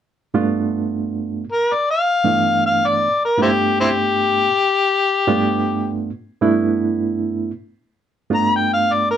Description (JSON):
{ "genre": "blues", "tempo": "79 BPM", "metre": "4/4", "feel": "swing 54% on 16ths", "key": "G mixolydian", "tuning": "A4 = 441 Hz", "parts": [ { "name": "barky reed electric piano", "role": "accompaniment", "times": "0.3-9.1 s", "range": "G2 to F4", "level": "-19 LUFS", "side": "right 4 dB", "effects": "overdrive, fast tremolo" }, { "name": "overdriven harmonica", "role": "melody", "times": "1.5-9.2 s", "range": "C4 to Bb5", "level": "-16 LUFS", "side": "left 3 dB", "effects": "none" } ], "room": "moderate studio reverb, RT60 0.6 s", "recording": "band playing live in one room", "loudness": "-16 LUFS", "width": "side -9 dB against mid", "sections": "0.3-9.2 A section", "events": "none", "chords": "0.3 G9", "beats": "| 0.35 1.11 1.86 2.62 | 3.38 4.14 4.90 5.66 | 6.42 7.17 7.93 8.69" }